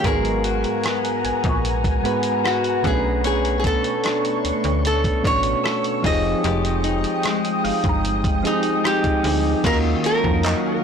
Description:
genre	contemporary R&B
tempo	75 BPM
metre	4/4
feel	straight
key	unclear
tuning	A4 = 440 Hz
part	metal-body resonator slide guitar	melody	0.0-10.8 s	Eb4 to Eb5	-24 LUFS	equal	tape echo
part	soft electric-piano-like synth keys	accompaniment	0.0-10.8 s	Ab2 to Cb5	-24 LUFS	right 4 dB	chorus, tremolo
part	glassy FM pad	sustained chords	0.0-10.8 s	Ab3 to Eb6	-27 LUFS	left 2 dB	ensemble chorus, built-in reverb, sidechain pumping
part	direct-recorded clean electric guitar	arpeggios	0.0-10.8 s	Eb3 to C#5	-27 LUFS	left 7 dB	tape echo
part	slap-like FM bass	bass	0.0-10.6 s	F1 to F2	-24 LUFS	equal	none
part	dusty soul sampler-style drum kit	drums	0.0-10.6 s	crash cymbal, handclaps, hi-hat, kick drum, rim click	-25 LUFS	equal	soft clipping on snare
part	soft round pluck	texture	0.0-10.8 s	Db5 to Db6	-32 LUFS	right 4 dB	chorus, tape echo
room	light reverb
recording	blown-out, overdriven recording, overdrive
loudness	-18 LUFS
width	side -7 dB against mid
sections	0.0-9.6 A section; 9.6-10.8 B section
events	none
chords	0.0 Abm9; 2.8 Bm9; 6.0 Fm9; 9.6 Ebm9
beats	| 0.04 0.84 1.64 2.44 | 3.24 4.04 4.84 5.64 | 6.44 7.24 8.04 8.84 | 9.64 10.44

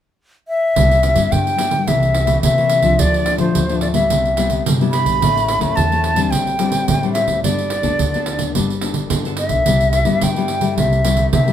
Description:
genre	samba and choro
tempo	108 BPM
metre	4/4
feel	straight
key	C major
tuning	A4 = 440 Hz
part	jazz flute	melody	0.5-11.5 s	C5 to B5	-18 LUFS	left 1 dB	none
part	nylon-string guitar	accompaniment	0.8-11.5 s	G2 to A4	-20 LUFS	left 5 dB	none
part	upright bass	bass	0.8-11.5 s	G1 to C3	-20 LUFS	right 1 dB	none
part	pandeiro	percussion	0.8-11.5 s	none	-21 LUFS	right 4 dB	none
room	wet studio reverb, RT60 0.6 s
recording	minimal, uncompressed stereo recording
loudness	-14 LUFS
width	side -10 dB against mid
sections	0.8-11.5 A section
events	none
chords	0.0 N.C.; 0.8 Cmaj7; 1.9 Am/C; 3.0 Dm; 4.1 Cmaj7; 5.2 A; 6.3 D7sus4/A; 7.4 Gadd9; 9.7 Cmaj7; 10.8 Am7/C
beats	0.20 | 0.76 1.32 1.87 2.43 | 2.99 3.54 4.10 4.66 | 5.21 5.77 6.33 6.88 | 7.44 8.00 8.55 9.11 | 9.66 10.22 10.78 11.33

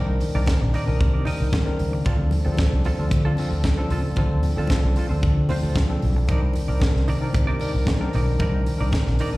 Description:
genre	disco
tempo	114 BPM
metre	4/4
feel	straight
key	C dorian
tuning	A4 = 438 Hz
part	mellow tine electric piano	accompaniment	0.0-9.4 s	D3 to C5	-28 LUFS	left 2 dB	medium stereo tremolo, slapback echo
part	semi-hollow electric guitar	accompaniment	0.0-9.4 s	C4 to Eb5	-33 LUFS	right 4 dB	tremolo, slapback echo
part	picked electric bass with an envelope filter	bass	0.0-9.4 s	Bb1 to D3	-22 LUFS	equal	none
part	tight funk drum kit	drums	0.2-9.3 s	hi-hat, kick drum, snare drum	-24 LUFS	equal	none
part	congas	percussion	0.2-9.0 s	none	-31 LUFS	left 2 dB	none
room	little or no reverb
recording	live gig heard through the venue's PA, recital hall reverb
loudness	-19 LUFS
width	side -20 dB against mid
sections	0.0-9.4 A section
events	none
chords	0.0 Cm9; 2.1 Dm7; 6.3 Cm9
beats	0.47 1.00 1.53 | 2.06 2.59 3.12 3.64 | 4.17 4.70 5.23 5.76 | 6.29 6.81 7.34 7.87 | 8.40 8.92

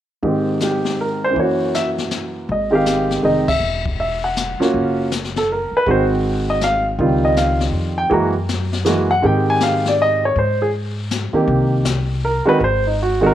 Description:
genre	jazz piano trio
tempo	160 BPM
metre	3/4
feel	swing 64% on 8ths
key	Ab major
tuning	A4 = 438 Hz
part	warm baby grand piano	melody	0.2-13.3 s	Gb2 to Bb5	-16 LUFS	right 1 dB	none
part	jazz brush drum kit	drums	0.2-13.3 s	brushed snare drum, hi-hat, kick drum, ride cymbal, snare drum	-27 LUFS	left 5 dB	none
part	upright bass	bass	2.5-13.3 s	E1 to Ab2	-22 LUFS	left 1 dB	none
room	light reverb, small room ambience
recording	1960s-style stereo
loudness	-16 LUFS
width	side -12 dB against mid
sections	0.2-2.5 A section; 2.5-11.5 B section; 11.5-13.3 C section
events	band accent 3.4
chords	0.2 Abmaj7; 1.3 Gb7; 2.5 Abmaj7; 3.6 Esus2; 4.7 Gbmaj7; 5.9 Ab7; 7.0 Dbmaj9#11; 8.1 Gb9; 9.2 Abmaj7; 11.5 Cm7; 12.6 Ab7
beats	| 0.22 0.59 0.97 | 1.34 1.72 2.10 | 2.47 2.85 3.23 | 3.60 3.98 4.35 | 4.73 5.10 5.48 | 5.85 6.23 6.60 | 6.97 7.35 7.72 | 8.10 8.47 8.85 | 9.22 9.60 9.97 | 10.35 10.72 11.10 | 11.47 11.85 12.22 | 12.60 12.97

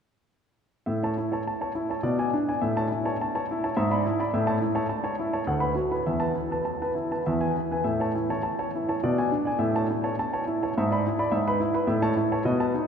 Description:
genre	classical, baroque-style suite movement for grand piano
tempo	104 BPM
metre	3/4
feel	rubato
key	A major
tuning	A4 = 440 Hz
part	clear grand piano	solo	0.9-12.9 s	D2 to B5	-24 LUFS	equal	none
room	wet cathedral reverb, RT60 7.2 s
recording	heard from further back in the room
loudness	-24 LUFS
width	side -7 dB against mid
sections	0.9-12.9 A section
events	none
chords	0.9 A; 2.0 G#dim/B; 2.6 A; 3.8 E7/G#; 4.3 A; 5.5 Bm/D; 6.1 Esus4; 7.3 E; 7.9 A; 9.0 G#dim/B; 9.6 A; 10.8 E7/G#; 11.3 E/G#; 11.9 A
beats	| 0.87 1.46 2.04 | 2.62 3.20 3.77 | 4.34 4.91 5.48 | 6.06 6.65 7.26 | 7.86 8.45 9.04 | 9.61 10.19 10.76 | 11.33 11.89 12.47

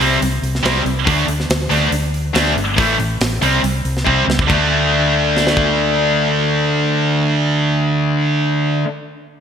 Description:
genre	hard rock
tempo	140 BPM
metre	4/4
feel	straight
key	unclear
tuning	A4 = 444 Hz
part	high-gain distorted guitar	riff	0.0-8.9 s	A2 to D4	-18 LUFS	right 6 dB	distortion
part	tight distorted guitar	riff	0.0-8.9 s	A2 to D4	-19 LUFS	left 8 dB	distortion
part	hollow-body short-scale fingered electric bass	bass	0.0-8.8 s	G1 to D2	-21 LUFS	equal	none
part	tight metal drum kit	drums	0.0-5.7 s	crash cymbal, hi-hat, kick drum, snare drum	-22 LUFS	equal	none
room	moderate lush hall reverb, RT60 2.0 s, studio ambience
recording	bright 1980s-style digital production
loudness	-14 LUFS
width	side -8 dB against mid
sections	0.0-4.5 A section; 4.5-7.9 B section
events	drum fill 4.1-4.5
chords	0.0 C5; 1.1 D5; 2.8 A5; 3.4 C5; 4.5 D5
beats	0.21 0.64 | 1.06 1.49 1.92 2.35 | 2.77 3.20 3.63 4.06 | 4.49 4.92 5.35 5.78 | 6.21 6.64 7.07 7.50

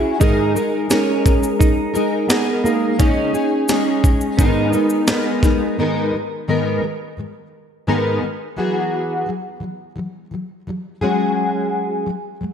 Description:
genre	acoustic pop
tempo	86 BPM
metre	4/4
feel	straight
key	G# minor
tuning	A4 = 439 Hz
part	clean electric guitar	second line	0.0-5.7 s	A#3 to E4	-22 LUFS	right 3 dB	analog chorus, ping-pong delay
part	fingerpicked plugged-in steel-string acoustic guitar	accompaniment	0.0-12.5 s	G#2 to A#4	-19 LUFS	left 1 dB	ensemble chorus
part	breakbeat sampler-style drum kit	drums	0.2-5.6 s	kick drum, shaker, snare drum	-17 LUFS	equal	none
room	moderate lush hall reverb, RT60 2.1 s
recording	dreamy mix soaked in reverb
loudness	-16 LUFS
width	side -8 dB against mid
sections	0.0-5.8 A section; 5.8-8.6 B section; 8.6-12.5 C section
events	none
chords	0.2 G#sus2; 3.0 C#sus2; 4.4 G#madd9; 8.6 Eadd9; 11.0 F#sus2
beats	| 0.21 0.90 1.60 2.30 | 2.99 3.69 4.39 5.08 | 5.78 6.48 7.18 7.87 | 8.57 9.27 9.97 10.67 | 11.37 12.06

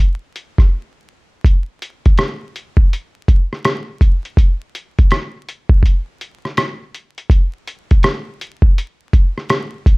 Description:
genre	hip hop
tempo	82 BPM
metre	4/4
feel	swing 64% on 16ths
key	none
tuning	none
part	lo-fi sampler-style drum kit	drums	0.0-10.0 s	hi-hat, kick drum, rim click	-12 LUFS	equal	none
room	light reverb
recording	dark, warm production, vinyl crackle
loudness	-14 LUFS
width	side -31 dB against mid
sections	0.0-10.0 A section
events	break 0.7-1.4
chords	none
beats	0.71 | 1.44 2.18 2.91 3.64 | 4.37 5.10 5.83 6.57 | 7.30 8.03 8.76 9.49

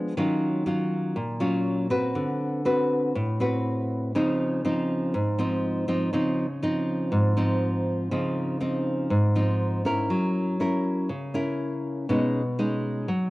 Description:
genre	bossa nova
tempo	121 BPM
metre	4/4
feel	straight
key	Db major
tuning	A4 = 441 Hz
part	nylon-string guitar	solo	0.0-13.3 s	Ab2 to Cb5	-23 LUFS	equal	none
room	light reverb, small room ambience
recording	home recording on cassette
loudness	-23 LUFS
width	side -19 dB against mid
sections	0.0-8.1 A section; 8.1-13.3 B section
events	none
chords	0.2 Ebm9; 2.2 D6; 4.1 Dbmaj9; 10.1 Gb7; 12.1 Cb69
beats	| 0.17 0.66 1.16 1.66 | 2.15 2.65 3.15 3.64 | 4.14 4.64 5.13 5.63 | 6.13 6.62 7.12 7.62 | 8.11 8.61 9.11 9.60 | 10.10 10.60 11.09 11.59 | 12.09 12.58 13.08

